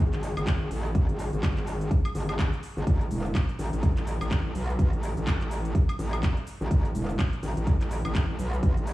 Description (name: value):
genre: bass house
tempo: 125 BPM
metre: 4/4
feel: swing 59% on 16ths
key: unclear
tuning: A4 = 440 Hz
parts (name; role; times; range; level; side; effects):
- metallic wobble bass; bass; 0.0-8.9 s; E1 to B1; -28 LUFS; equal; distortion, chorus, sidechain pumping
- house drum kit; drums; 0.1-8.9 s; handclaps, hi-hat, shaker, woodblock; -37 LUFS; left 1 dB; none
- electronic kick drum; drums; 0.5-8.7 s; none; -24 LUFS; equal; none
room: digital ambience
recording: played on a big sound system in a bare room, stone room reverb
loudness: -25 LUFS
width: side -17 dB against mid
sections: 0.0-8.9 A section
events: none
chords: none